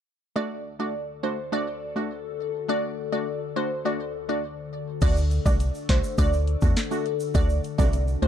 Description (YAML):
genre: dancehall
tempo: 103 BPM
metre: 4/4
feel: straight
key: unclear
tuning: A4 = 440 Hz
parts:
  - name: glassy wavetable pluck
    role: melody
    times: 0.4-8.3 s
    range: C5 to D5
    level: -31 LUFS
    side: right 2 dB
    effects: chorus, digital delay
  - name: wavetable chord stab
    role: accompaniment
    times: 0.4-8.3 s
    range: A3 to F#4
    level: -31 LUFS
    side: left 1 dB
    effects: none
  - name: glassy FM pad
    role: sustained chords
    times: 0.4-8.3 s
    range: D2 to A4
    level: -33 LUFS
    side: left 8 dB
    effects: ensemble chorus, built-in reverb, phaser, sidechain pumping
  - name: organ-like FM bass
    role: bass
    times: 5.0-8.3 s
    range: C2 to E2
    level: -23 LUFS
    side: equal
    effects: none
  - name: afro-pop drum kit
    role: drums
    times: 5.0-8.3 s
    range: crash cymbal, handclaps, hi-hat, kick drum, snare drum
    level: -23 LUFS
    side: equal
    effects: none
  - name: tube shaker and timbales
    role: percussion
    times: 5.0-8.2 s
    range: none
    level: -39 LUFS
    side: right 6 dB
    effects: none
room: little or no reverb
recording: dark, warm production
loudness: -23 LUFS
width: side -10 dB against mid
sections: 0.4-5.0 A section; 5.0-8.3 B section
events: none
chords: 0.4 D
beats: | 0.36 0.94 1.52 2.11 | 2.69 3.27 3.85 4.44 | 5.02 5.60 6.18 6.77 | 7.35 7.93